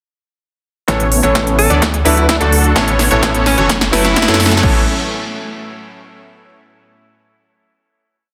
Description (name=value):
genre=EDM, festival progressive house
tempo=128 BPM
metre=4/4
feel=straight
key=A major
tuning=A4 = 440 Hz
part: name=bright grand piano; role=accompaniment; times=0.9-4.8 s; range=A2 to D5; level=-22 LUFS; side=equal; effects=vintage 12-bit sampler grit, sidechain pumping, tape echo
part: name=supersaw pad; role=sustained chords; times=1.2-4.9 s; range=D3 to A4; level=-28 LUFS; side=equal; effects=none
part: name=plucky unison lead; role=arpeggios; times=0.9-4.8 s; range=A4 to D5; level=-23 LUFS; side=equal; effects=sidechain pumping, tape echo
part: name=dense compressed supersaw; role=riff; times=0.9-4.8 s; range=B3 to D5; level=-22 LUFS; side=equal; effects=sidechain pumping, low-pass filter, tape echo
part: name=saturated sub bass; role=bass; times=0.9-4.9 s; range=F#1 to F#2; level=-20 LUFS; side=equal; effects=sidechain pumping
part: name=big-room dance drum kit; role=drums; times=0.9-4.7 s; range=crash cymbal, hi-hat, snare drum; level=-20 LUFS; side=equal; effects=overdrive
part: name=electronic kick drum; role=drums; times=0.9-4.7 s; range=none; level=-21 LUFS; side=equal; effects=overdrive, high-pass filter on kick, high-pass filter on room
part: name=riser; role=sound effects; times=3.3-4.6 s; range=none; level=-30 LUFS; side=equal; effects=none
part: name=bright alto saxophone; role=melody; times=1.6-4.6 s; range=C#4 to A4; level=-22 LUFS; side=equal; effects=tape echo
room=moderate recital hall reverb, RT60 1.7 s, digital ambience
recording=dense, heavily limited modern master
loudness=-13 LUFS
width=mono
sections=0.9-4.6 build; 4.6-6.5 final chord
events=build-up 0.9-4.6; drum fill 0.9-4.6; filter sweep on supersaw synth 0.9-4.6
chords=0.9 Aadd9; 1.8 D; 2.8 Aadd9; 3.7 F#m; 4.6 Aadd9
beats=| 0.88 1.35 1.82 2.29 | 2.76 3.23 3.70 4.17 | 4.63